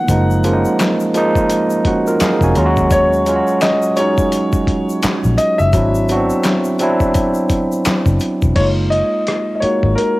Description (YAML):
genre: R&B, neo-soul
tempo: 85 BPM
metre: 4/4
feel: swing 60% on 16ths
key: unclear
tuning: A4 = 441 Hz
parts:
  - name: warm concert grand piano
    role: melody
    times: 0.0-10.2 s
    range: A#4 to F#5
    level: -19 LUFS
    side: left 1 dB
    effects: cassette tape
  - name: barky tine electric piano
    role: accompaniment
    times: 0.0-10.2 s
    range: E#3 to A#5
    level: -16 LUFS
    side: right 1 dB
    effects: overdrive, cassette tape
  - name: vintage muted fingered electric bass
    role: bass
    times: 0.1-9.9 s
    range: E1 to D#2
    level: -17 LUFS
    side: equal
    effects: none
  - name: dusty soul sampler-style drum kit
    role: drums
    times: 0.1-10.2 s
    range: crash cymbal, handclaps, hi-hat, kick drum, rim click, snare drum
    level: -19 LUFS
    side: left 1 dB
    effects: overdrive, cassette tape
  - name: egg shaker and finger snaps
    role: percussion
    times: 0.1-8.5 s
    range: none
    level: -30 LUFS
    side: left 4 dB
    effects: none
room: light reverb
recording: home recording on cassette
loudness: -13 LUFS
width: side -19 dB against mid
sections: 0.0-8.6 A section; 8.6-10.2 B section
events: tine electric piano fill 1.5-2.9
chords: 0.1 F#maj9; 2.6 D#m11; 5.7 G#7alt; 8.6 F#maj9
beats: | 0.09 0.79 1.50 2.20 | 2.91 3.62 4.32 5.03 | 5.73 6.44 7.14 7.85 | 8.56 9.26 9.97